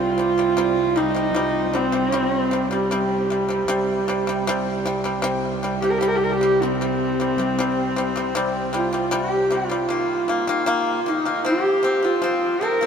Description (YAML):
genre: mongolian traditional, Mongolian folk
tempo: 77 BPM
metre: 4/4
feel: straight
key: C yu mode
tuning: A4 = 439 Hz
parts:
  - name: clear horsehead fiddle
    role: melody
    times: 0.0-12.9 s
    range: G3 to Bb4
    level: -21 LUFS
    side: right 1 dB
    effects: slapback echo
  - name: pipa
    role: arpeggios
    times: 0.0-12.9 s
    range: C3 to C4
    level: -24 LUFS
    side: left 2 dB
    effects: none
  - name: rich cello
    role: drone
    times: 0.0-10.0 s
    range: C2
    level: -28 LUFS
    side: right 4 dB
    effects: none
room: wet huge ambient reverb, RT60 7.9 s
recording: heard from further back in the room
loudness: -19 LUFS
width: side -7 dB against mid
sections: 0.0-9.9 A section; 9.9-12.9 B section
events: none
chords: 0.0 C5; 9.9 Eb5; 11.5 F5